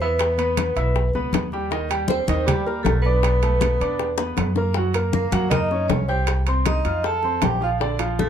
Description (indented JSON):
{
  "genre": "Afro-Cuban jazz",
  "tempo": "158 BPM",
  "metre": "4/4",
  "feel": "straight",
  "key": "unclear",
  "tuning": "A4 = 440 Hz",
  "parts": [
    { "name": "vibraphone with medium hard mallets", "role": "melody", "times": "0.0-8.3 s", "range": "G4 to A5", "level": "-25 LUFS", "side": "right 1 dB", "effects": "none" },
    { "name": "clear tenor saxophone", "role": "second line", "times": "0.0-8.3 s", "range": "G3 to A4", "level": "-29 LUFS", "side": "right 1 dB", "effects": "none" },
    { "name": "clear grand piano", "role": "accompaniment", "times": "0.0-8.3 s", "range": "D3 to G6", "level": "-26 LUFS", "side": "right 1 dB", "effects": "none" },
    { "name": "upright bass", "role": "bass", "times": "0.0-8.3 s", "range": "Bb1 to F#2", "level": "-23 LUFS", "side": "equal", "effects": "none" },
    { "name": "bongos", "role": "percussion", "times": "0.0-8.3 s", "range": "none", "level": "-29 LUFS", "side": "left 6 dB", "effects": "none" },
    { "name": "congas", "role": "percussion", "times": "0.0-8.3 s", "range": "none", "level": "-26 LUFS", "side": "left 2 dB", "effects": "none" },
    { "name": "timbales", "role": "percussion", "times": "0.2-8.2 s", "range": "none", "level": "-30 LUFS", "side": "right 6 dB", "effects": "none" }
  ],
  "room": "moderate small room ambience, RT60 0.5 s",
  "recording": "dark, warm production",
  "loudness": "-19 LUFS",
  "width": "side -8 dB against mid",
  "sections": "0.0-8.3 A section",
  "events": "drum fill 4.2-4.8",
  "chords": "0.2 E5; 1.7 Ebmaj7; 3.2 Bm7; 4.0 Esus2; 4.8 Gb; 6.3 Cm; 7.0 F"
}